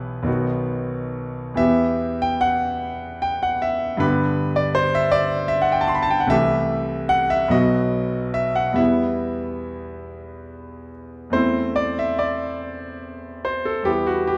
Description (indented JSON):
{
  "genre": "classical, romantic nocturne for solo piano",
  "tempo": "45-53 BPM (dotted quarters)",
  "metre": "12/8",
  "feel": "rubato",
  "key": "E minor",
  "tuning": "A4 = 442 Hz",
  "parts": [
    { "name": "bright concert grand piano", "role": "solo", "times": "0.0-14.4 s", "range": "B1 to C6", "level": "-22 LUFS", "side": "equal", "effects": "none" }
  ],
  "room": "moderate recital hall reverb, RT60 1.3 s",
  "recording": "dark, warm production",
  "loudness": "-21 LUFS",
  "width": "mono",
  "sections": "0.0-14.4 A section",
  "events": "none",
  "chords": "0.3 B; 1.6 Em; 4.0 G; 6.3 C6; 7.5 B; 8.8 Em; 11.4 Am/E; 13.9 Em"
}